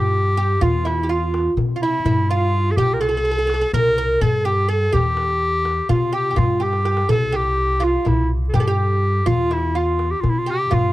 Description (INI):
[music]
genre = Turkish makam ensemble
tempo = 250 BPM (eighths)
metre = 9/8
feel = straight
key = unclear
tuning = A4 = 440 Hz
[part]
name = bright clarinet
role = melody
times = 0.0-10.9 s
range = E4 to Bb4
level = -21 LUFS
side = left 1 dB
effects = none
[part]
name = oud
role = second line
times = 0.0-10.9 s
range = E4 to Bb4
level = -24 LUFS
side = right 4 dB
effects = none
[part]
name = upright bass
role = bass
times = 0.0-10.9 s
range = C2 to C3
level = -22 LUFS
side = equal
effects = none
[part]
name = darbuka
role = percussion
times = 0.4-10.8 s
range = none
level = -23 LUFS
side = left 3 dB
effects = none
[sound]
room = small room ambience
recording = dry, close 1970s-style studio recording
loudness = -17 LUFS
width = side -16 dB against mid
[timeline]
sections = 0.0-10.9 A section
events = drum fill 6.6-7.1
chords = none